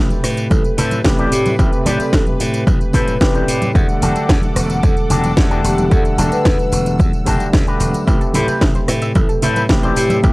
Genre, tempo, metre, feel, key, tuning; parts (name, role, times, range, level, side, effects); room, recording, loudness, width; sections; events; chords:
nu-disco, nu disco; 111 BPM; 4/4; straight; A4 = 441 Hz
overdriven tine electric piano; accompaniment; 0.0-10.3 s; C3 to F#5; -21 LUFS; equal; sidechain pumping
lush unison pad; sustained chords; 0.0-8.1 s; A4 to E6; -29 LUFS; equal; chorus, sidechain pumping
glassy slap bass; bass; 0.0-10.3 s; E1 to A2; -20 LUFS; equal; tube saturation, sidechain pumping
house drum kit; drums; 0.1-10.3 s; hi-hat, rim click, snare drum, tambourine; -22 LUFS; equal; overdrive
congas and tambourine; percussion; 0.1-10.3 s; -25 LUFS; right 1 dB
electric guitar with an envelope filter; riff; 0.2-10.2 s; C4 to D5; -23 LUFS; left 2 dB; lush chorus
vibraphone with soft mallets; melody; 0.5-10.2 s; G4 to B4; -24 LUFS; left 1 dB; vintage 12-bit sampler grit, tape echo
electronic kick drum; drums; 0.5-10.3 s; -16 LUFS; equal; overdrive
analog pluck; arpeggios; 8.1-10.3 s; E4 to E5; -27 LUFS; right 2 dB; chorus, sidechain pumping, tape echo
little or no reverb; dry, gritty hardware recording, cassette tape; -13 LUFS; side -21 dB against mid
0.0-10.3 A section
0.0 Am9; 3.8 Em11; 8.1 Am9